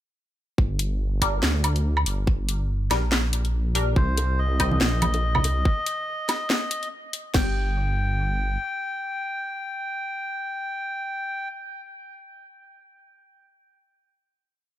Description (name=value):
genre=deep dubstep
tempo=142 BPM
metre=4/4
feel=swing 56% on 16ths, half-time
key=unclear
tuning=A4 = 439 Hz
part: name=dark detuned saw bass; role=bass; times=0.6-8.6 s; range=G1 to D2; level=-24 LUFS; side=equal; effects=none
part: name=garage drum kit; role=drums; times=0.6-7.5 s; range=crash cymbal, kick drum, snare drum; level=-22 LUFS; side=equal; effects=small room ambience
part: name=garage drum kit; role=drums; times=0.8-7.2 s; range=handclaps, hi-hat, snare drum, woodblock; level=-25 LUFS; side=equal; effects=small room ambience
part: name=filtered dub chord stab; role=stabs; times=1.2-4.8, 7.3-12.1 s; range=G3 to Eb5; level=-31 LUFS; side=left 3 dB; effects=phaser, analog chorus, dub echo
part: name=melodica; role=melody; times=4.0-11.5 s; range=C5 to G5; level=-29 LUFS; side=left 1 dB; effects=dub echo
part: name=congas and bongos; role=percussion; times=4.0-5.5 s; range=none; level=-30 LUFS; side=right 2 dB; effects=none
room=little or no reverb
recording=none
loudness=-22 LUFS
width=side -12 dB against mid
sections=0.6-7.3 drop; 7.3-10.7 final chord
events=drop 0.6-7.3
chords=0.6 Gm; 4.0 Cm; 7.3 G